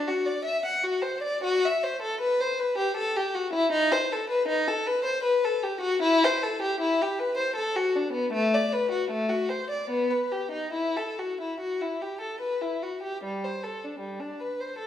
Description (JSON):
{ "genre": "classical, baroque-style suite movement for unaccompanied violin", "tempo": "67-80 BPM", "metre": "3/4", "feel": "rubato", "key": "E minor from 3.7 s", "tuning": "A4 = 440 Hz", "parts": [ { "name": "warm violin", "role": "solo", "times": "0.0-14.9 s", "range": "G3 to F#5", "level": "-25 LUFS", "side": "left 2 dB", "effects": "none" } ], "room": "wet recital hall reverb, RT60 1.4 s", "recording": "small room ambience", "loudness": "-25 LUFS", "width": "side -10 dB against mid", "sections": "0.0-13.2 A section; 13.2-14.9 A section", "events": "none", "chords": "none", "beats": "0.65 | 1.44 2.21 2.96 | 3.71 4.47 5.22 | 6.01 6.79 7.56 | 8.33 9.10 9.89 | 10.74 11.60 12.42 | 13.23 14.02 14.79" }